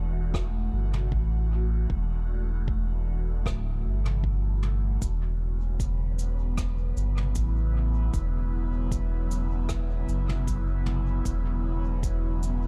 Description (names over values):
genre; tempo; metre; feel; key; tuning
ambient dub; 77 BPM; 4/4; straight; unclear; A4 = 437 Hz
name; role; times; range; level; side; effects
airy breathy pad; sustained chords; 0.0-12.7 s; C#3 to F#4; -38 LUFS; equal; chorus, phaser
round analog bass; bass; 0.0-12.7 s; D1 to A1; -29 LUFS; equal; tube saturation
electronic kick drum; drums; 0.3-12.2 s; none; -34 LUFS; equal; none
jazz brush drum kit; drums; 0.3-12.6 s; cabasa, rim click, toms; -41 LUFS; equal; dub echo
room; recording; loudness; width
small room reverb; echo-heavy mix; -28 LUFS; mono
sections
0.0-12.7 A section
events
none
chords
0.0 Em11; 5.0 A/E (rootless)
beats
0.34 1.12 | 1.90 2.68 3.46 4.24 | 5.02 5.80 6.58 7.36 | 8.14 8.92 9.70 10.47 | 11.25 12.03